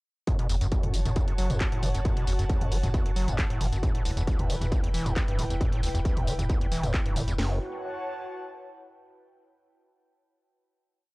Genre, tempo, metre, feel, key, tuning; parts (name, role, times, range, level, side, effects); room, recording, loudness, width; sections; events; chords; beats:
driving peak-time techno; 135 BPM; 4/4; straight; A4 = 440 Hz
overdriven acid bass; riff; 0.3-7.6 s; D2 to F#3; -31 LUFS; equal; distortion, sidechain pumping, tape echo
techno drum kit; drums; 0.3-7.5 s; hi-hat, kick drum, snare drum; -28 LUFS; equal; distortion
techno drum kit; drums; 0.3-7.4 s; handclaps, hi-hat, tambourine, toms; -34 LUFS; equal
airy breathy pad; texture; 0.3-9.1 s; E4 to A5; -37 LUFS; equal; chorus, sidechain pumping
saturated sub bass; bass; 0.4-7.6 s; E1 to F#1; -31 LUFS; equal; tube saturation, sidechain pumping, low-pass filter
little or no reverb; dry, gritty hardware recording, cassette tape; -25 LUFS; side -24 dB against mid
0.3-7.4 drop; 7.4-9.2 final chord
drop 0.3-7.4
0.3 F#m; 3.8 Em; 7.4 F#m
| 0.27 0.72 1.16 1.61 | 2.05 2.50 2.94 3.38 | 3.83 4.27 4.72 5.16 | 5.61 6.05 6.50 6.94 | 7.38 7.83 8.27 8.72